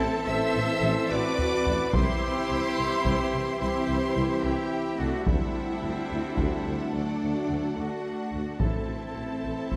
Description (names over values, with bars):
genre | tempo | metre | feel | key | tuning
cinematic, epic orchestral film score | 72 BPM (dotted quarters) | 12/8 | straight | A dorian | A4 = 442 Hz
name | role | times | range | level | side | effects
warm symphonic violin section | melody | 0.0-9.8 s | D5 to E6 | -41 LUFS | equal | none
rich symphonic violin section | second line | 0.0-9.8 s | D5 to E6 | -42 LUFS | equal | none
rich symphonic viola section | accompaniment | 0.0-9.8 s | F#3 to A4 | -36 LUFS | equal | none
dark French horn section | sustained chords | 0.0-9.8 s | E3 to F#4 | -37 LUFS | equal | none
rich symphonic string section | sustained chords | 0.0-9.8 s | A3 to F#5 | -38 LUFS | equal | none
clear trumpet section | stabs | 0.0-9.8 s | A3 to C5 | -36 LUFS | equal | none
mellow tuba | bass | 0.0-9.8 s | A1 to D2 | -37 LUFS | equal | none
rich symphonic cello section | bass | 0.0-9.8 s | D4 to E5 | -36 LUFS | equal | none
rich symphonic double bass section | bass | 0.0-9.8 s | A1 to D2 | -38 LUFS | equal | none
solo taiko drums | drums | 1.4-9.8 s | none | -32 LUFS | equal | none
timpani | percussion | 8.6-9.4 s | A2 | -39 LUFS | equal | none
room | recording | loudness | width
moderate scoring stage reverb, RT60 2.0 s | none | -27 LUFS | mono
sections
0.0-9.8 A section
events
none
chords
0.0 Am; 1.9 C; 5.3 D; 8.6 Am